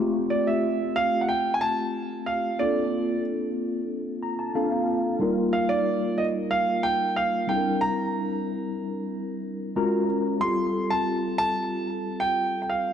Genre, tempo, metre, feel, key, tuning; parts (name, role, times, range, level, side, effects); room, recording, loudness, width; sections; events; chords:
pop; 92 BPM; 4/4; straight; F major; A4 = 438 Hz
mellow tine electric piano; accompaniment; 0.0-12.9 s; G3 to Bb5; -26 LUFS; left 1 dB; fast stereo tremolo, ensemble chorus
clear grand piano; melody; 0.3-12.9 s; D5 to C6; -25 LUFS; right 2 dB
wet plate reverb, RT60 2.5 s; dark, warm production; -23 LUFS; side -8 dB against mid
0.0-12.9 A section
tine electric piano fill 3.9-5.2, 9.4-10.4
0.0 Fadd9; 2.6 Bbmaj7; 5.2 Ebadd9; 7.5 C7; 9.8 Gbmaj9; 10.4 Fadd9